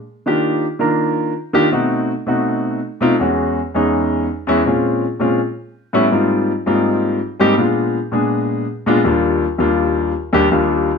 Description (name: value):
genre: jazz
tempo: 164 BPM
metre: 4/4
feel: straight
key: Eb major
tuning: A4 = 439 Hz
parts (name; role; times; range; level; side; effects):
- warm grand piano; solo; 0.3-10.9 s; Eb2 to Bb4; -15 LUFS; left 1 dB; slapback echo
room: moderate studio reverb, RT60 0.8 s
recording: close, detailed microphones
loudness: -15 LUFS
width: side -5 dB against mid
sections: 0.3-11.0 A section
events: none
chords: 0.3 Ebmaj9; 1.7 B7b9; 3.2 E69; 4.7 Bbm9; 5.4 A9; 6.1 Abmaj13; 7.6 Bb7b9; 9.0 Ebmaj9